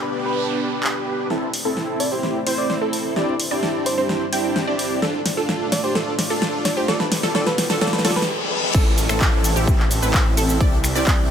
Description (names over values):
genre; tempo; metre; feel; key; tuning
EDM, festival progressive house; 129 BPM; 4/4; straight; A minor; A4 = 440 Hz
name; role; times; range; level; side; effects
soft struck synth lead; melody; 0.0-8.3 s; B4 to D5; -29 LUFS; equal; chorus, digital delay
lush unison pad; sustained chords; 0.0-11.3 s; G3 to D6; -29 LUFS; left 1 dB; chorus, phaser, sidechain pumping
supersaw chords; riff; 0.0-11.3 s; C4 to G5; -24 LUFS; right 1 dB; lush chorus, sidechain pumping, low-pass filter, digital delay
noise sweep, riser, reverse cymbal and downlifter; sound effects; 0.0-11.3 s; none; -30 LUFS; left 1 dB; none
big-room dance drum kit; drums; 0.8-11.2 s; cabasa, crash cymbal, finger snaps, handclaps, hi-hat, snare drum; -24 LUFS; equal; none
wide unison pluck; arpeggios; 1.3-11.3 s; G4 to G5; -28 LUFS; right 1 dB; sidechain pumping, digital delay
wide detuned saw bass; bass; 8.7-11.3 s; A1 to C2; -23 LUFS; equal; chorus, sidechain pumping
electronic kick drum; drums; 8.7-11.2 s; none; -18 LUFS; equal; none
room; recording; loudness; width
light reverb; none; -18 LUFS; side -8 dB against mid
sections
0.0-1.3 A section; 1.3-8.7 B section; 8.7-11.3 C section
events
noise sweep 0.0-1.3; build-up 1.3-8.7; drum fill 1.3-8.3; filter sweep on supersaw synth 1.3-8.7; filter sweep on synth pluck 1.3-8.7; filter sweep on analog synth pad 1.3-8.7; reverse cymbal 7.8-8.7; stop 8.3-8.7; drop 8.7-11.3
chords
0.0 G; 1.3 Am; 3.2 Cadd9; 5.0 Dm; 6.9 G; 8.7 Am; 10.6 Cadd9